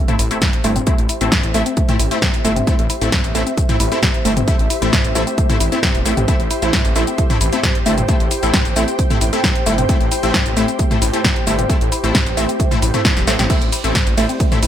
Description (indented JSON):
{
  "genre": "driving peak-time techno",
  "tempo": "133 BPM",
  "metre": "4/4",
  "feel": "straight",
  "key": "A minor",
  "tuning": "A4 = 440 Hz",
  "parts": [
    { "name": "woody wave-folded pluck", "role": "riff", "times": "0.0-14.7 s", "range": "A3 to E4", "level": "-24 LUFS", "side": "right 1 dB", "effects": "chorus, sidechain pumping, ping-pong delay" },
    { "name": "sub drop", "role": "sound effects", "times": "0.0-0.9 s", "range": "none", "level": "barely audible", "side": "none", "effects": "none" },
    { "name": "ethereal airy pad", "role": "texture", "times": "0.1-14.7 s", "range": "G4 to G5", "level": "-24 LUFS", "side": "equal", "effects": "ensemble chorus, built-in reverb, sidechain pumping" },
    { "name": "rave stab", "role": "stabs", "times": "0.1-14.6 s", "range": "A3 to E4", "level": "-22 LUFS", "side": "left 2 dB", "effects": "chorus, built-in reverb, cassette tape, sidechain pumping, digital delay" },
    { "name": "techno drum kit", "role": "drums", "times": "0.1-14.7 s", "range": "crash cymbal, hi-hat, ride cymbal, shaker, snare drum, toms", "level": "-20 LUFS", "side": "equal", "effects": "sidechain pumping on hats, sidechain pumping on toms, sidechain pumping on cymbals, sidechain pumping on perc, gated reverb" },
    { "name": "detuned saw bass", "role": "bass", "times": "0.2-14.7 s", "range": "E1 to A1", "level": "-21 LUFS", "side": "equal", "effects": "sidechain pumping" },
    { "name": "electronic kick drum", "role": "drums", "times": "0.4-14.5 s", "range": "none", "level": "-18 LUFS", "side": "equal", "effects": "none" }
  ],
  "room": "light reverb, digital ambience",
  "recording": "bright 1980s-style digital production",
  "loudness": "-14 LUFS",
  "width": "side -10 dB against mid",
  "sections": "0.0-14.7 A section",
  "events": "impact 0.0-0.9; drum fill 13.2-13.5",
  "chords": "0.0 Am"
}